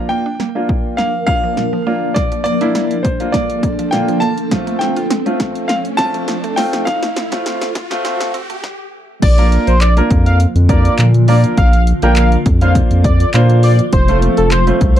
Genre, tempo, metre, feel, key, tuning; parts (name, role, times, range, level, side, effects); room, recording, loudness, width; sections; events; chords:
dance-pop; 102 BPM; 4/4; straight; A4 = 442 Hz
clear baby grand piano; melody; 0.0-8.6 s; C5 to Bb5; -20 LUFS; left 1 dB; slapback echo
warm baby grand piano; accompaniment; 0.0-15.0 s; A3 to C5; -19 LUFS; right 1 dB; sidechain pumping
granular cloud pad; sustained chords; 0.5-15.0 s; C3 to Bb4; -22 LUFS; equal; built-in reverb, sidechain pumping
mallet-like synth pluck; arpeggios; 0.0-8.6 s; Bb2 to F4; -25 LUFS; right 8 dB; chorus, sidechain pumping, slapback echo
riser; sound effects; 1.8-8.6 s; -29 LUFS; right 1 dB
punchy analog drum machine; drums; 0.4-15.0 s; crash cymbal, handclaps, hi-hat, kick drum, snare drum; -17 LUFS; equal
wide unison lead; melody; 9.2-15.0 s; A4 to G5; -18 LUFS; equal; sidechain pumping, slapback echo
saturated sub bass; bass; 9.2-15.0 s; F1 to Bb2; -12 LUFS; equal; sidechain pumping
little or no reverb; dry, close 1970s-style studio recording, high-pass filter; -12 LUFS; side -11 dB against mid
0.0-9.2 A section; 9.2-15.0 B section
build-up 0.0-9.2; drum fill 0.0-8.6; filter sweep 0.0-9.2; riser 1.8-9.2; stop 8.6-9.2; drop 9.2-15.0
0.0 Bb; 4.5 F; 9.2 Bb; 13.9 F